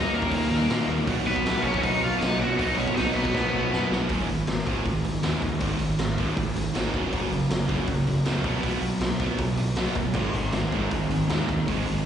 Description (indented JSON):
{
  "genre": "punk rock",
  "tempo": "158 BPM",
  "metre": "4/4",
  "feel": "straight",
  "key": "unclear",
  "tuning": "A4 = 440 Hz",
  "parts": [
    { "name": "cranked stack guitar", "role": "melody", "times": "0.0-3.9 s", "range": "Bb3 to F#5", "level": "-26 LUFS", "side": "equal", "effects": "overdrive, slapback echo" },
    { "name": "fuzz guitar", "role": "riff", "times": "0.0-4.1, 10.1-12.1 s", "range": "Ab2 to Eb4", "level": "-30 LUFS", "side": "equal", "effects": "distortion, slapback echo" },
    { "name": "sludgy distorted guitar", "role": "riff", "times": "0.0-12.0 s", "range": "Gb2 to Eb4", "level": "-30 LUFS", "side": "left 7 dB", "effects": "overdrive" },
    { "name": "fuzz picked electric bass", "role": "bass", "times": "0.0-12.0 s", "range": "Gb1 to Bb2", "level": "-32 LUFS", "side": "equal", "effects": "overdrive" },
    { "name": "raw garage drum kit", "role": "drums", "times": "0.2-12.0 s", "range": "crash cymbal, hi-hat, kick drum, snare drum", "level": "-28 LUFS", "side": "equal", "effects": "none" },
    { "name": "distorted electric guitar", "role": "riff", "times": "1.1-12.0 s", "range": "Gb2 to B3", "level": "-29 LUFS", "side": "right 7 dB", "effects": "distortion, slapback echo" }
  ],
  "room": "studio reverb",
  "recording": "live gig heard through the venue's PA, recital hall reverb, nothing above 10.6 kHz",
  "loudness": "-23 LUFS",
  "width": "side -9 dB against mid",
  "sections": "0.0-4.1 A section; 4.1-12.1 B section",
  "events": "drum fill 3.3-4.1",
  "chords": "0.0 Eb; 1.1 B; 4.1 Ab5; 6.9 Gb5; 8.4 B5; 10.2 Ab"
}